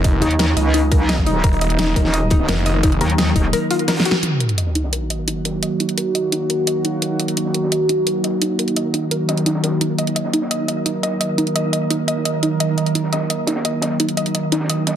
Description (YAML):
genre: dark technical drum and bass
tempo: 172 BPM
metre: 4/4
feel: straight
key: Eb minor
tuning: A4 = 445 Hz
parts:
  - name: sweeping resonant pad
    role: sustained chords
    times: 0.0-15.0 s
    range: Eb3 to Bb4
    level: -20 LUFS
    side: right 1 dB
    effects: chorus, phaser, vintage 12-bit sampler grit, sidechain pumping
  - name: warbly dusty pluck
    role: arpeggios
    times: 0.0-15.0 s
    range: Eb4 to Eb5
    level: -23 LUFS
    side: left 1 dB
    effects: chorus, sidechain pumping, digital delay
  - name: snarling distorted saw bass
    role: bass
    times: 0.0-3.0 s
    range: Eb1 to F1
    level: -20 LUFS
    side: equal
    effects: tube saturation, sidechain pumping
  - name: crunchy breakbeat drum kit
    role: drums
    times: 0.0-15.0 s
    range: hi-hat, snare drum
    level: -33 LUFS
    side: equal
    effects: none
  - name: dubstep drum kit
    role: drums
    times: 0.0-14.9 s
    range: hi-hat, snare drum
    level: -22 LUFS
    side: equal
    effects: none
  - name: electronic kick drum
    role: drums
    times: 0.0-3.4 s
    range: none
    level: -17 LUFS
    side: equal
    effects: none
  - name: metallic wobble bass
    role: bass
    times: 0.2-3.5 s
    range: Eb1 to Eb2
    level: -19 LUFS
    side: equal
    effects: chorus
  - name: sub drop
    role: sound effects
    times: 4.2-5.6 s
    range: none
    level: -21 LUFS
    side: equal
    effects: none
room: light reverb, digital ambience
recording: dense, heavily limited modern master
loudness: -16 LUFS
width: side -9 dB against mid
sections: 0.0-4.2 A section; 4.2-15.0 B section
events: drum fill 3.9-4.2; band accent 4.1; impact 4.2-5.6; filter sweep on synth arpeggio sound 4.2-15.0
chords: 0.0 Ebm